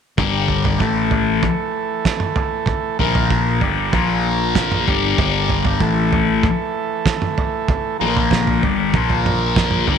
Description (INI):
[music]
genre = psychedelic rock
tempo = 96 BPM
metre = 4/4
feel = straight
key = unclear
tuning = A4 = 442 Hz
[part]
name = combo organ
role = sustained chords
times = 0.2-10.0 s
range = E3 to Bb4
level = -22 LUFS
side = right 8 dB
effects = spring reverb
[part]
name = thick fuzz guitar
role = riff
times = 0.2-10.0 s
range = G2 to Bb3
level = -19 LUFS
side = left 10 dB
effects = distortion, phaser
[part]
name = fingered electric bass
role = bass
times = 0.2-10.0 s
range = G1 to Bb1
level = -24 LUFS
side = equal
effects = none
[part]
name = cloth-damped thuddy drum kit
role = drums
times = 0.2-10.0 s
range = kick drum, snare drum, toms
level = -20 LUFS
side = right 3 dB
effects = none
[sound]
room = light reverb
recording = 1960s-style stereo with parts hard left and right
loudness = -16 LUFS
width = side -7 dB against mid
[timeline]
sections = 0.2-10.0 A section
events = none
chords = 0.2 Gm; 0.8 A5; 3.0 Bb5; 3.6 Gm; 3.9 Bb5; 4.9 Gm; 5.8 A5; 8.0 Bb5; 8.6 Gm; 8.9 Bb5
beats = | 0.19 0.81 1.44 2.06 | 2.69 3.31 3.94 4.56 | 5.19 5.81 6.44 7.06 | 7.69 8.31 8.94 9.56